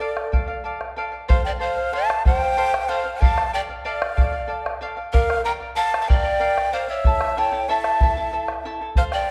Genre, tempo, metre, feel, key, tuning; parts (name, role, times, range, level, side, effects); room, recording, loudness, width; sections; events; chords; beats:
andean folk, Andean ensemble; 94 BPM; 3/4; straight; D minor; A4 = 440 Hz
breathy quena; melody; 0.0-9.3 s; D5 to Bb5; -27 LUFS; equal
breathy mellow pan flute; second line; 0.0-9.3 s; A4 to G5-20c; -30 LUFS; equal
charango; accompaniment; 0.0-9.3 s; E4 to A5; -30 LUFS; equal
bombo; percussion; 0.2-9.3 s; -24 LUFS; equal
moderate scoring stage reverb, RT60 1.8 s; dark, warm production; -22 LUFS; mono
0.0-1.3 A section; 1.3-9.3 B section
0.0 Dm; 1.3 F; 3.2 Dm; 5.1 Bb; 7.1 A
0.01 0.65 | 1.29 1.94 2.58 | 3.22 3.86 4.50 | 5.13 5.77 6.41 | 7.05 7.69 8.33 | 8.97